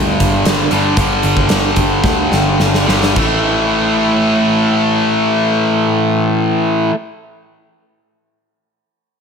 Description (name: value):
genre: hard rock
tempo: 103-119 BPM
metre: 4/4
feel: straight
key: unclear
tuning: A4 = 439 Hz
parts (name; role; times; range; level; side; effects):
- distorted electric guitar; riff; 0.0-7.0 s; G2 to A3; -13 LUFS; equal; overdrive
- picked electric bass; bass; 0.0-6.9 s; G1 to D2; -20 LUFS; equal; none
- big rock drum kit; drums; 0.2-3.3 s; crash cymbal, hi-hat, kick drum, snare drum; -17 LUFS; equal; none
room: light reverb, small room reverb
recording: none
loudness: -12 LUFS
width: side -6 dB against mid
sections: 0.0-3.2 A section; 3.2-7.8 B section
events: slowing down 0.0-3.2; drum fill 2.0-3.2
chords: 0.0 G5; 3.2 A5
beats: 0.46 | 0.97 1.50 2.04 2.59 | 3.16 3.75 4.33 4.91 | 5.49 6.07 6.65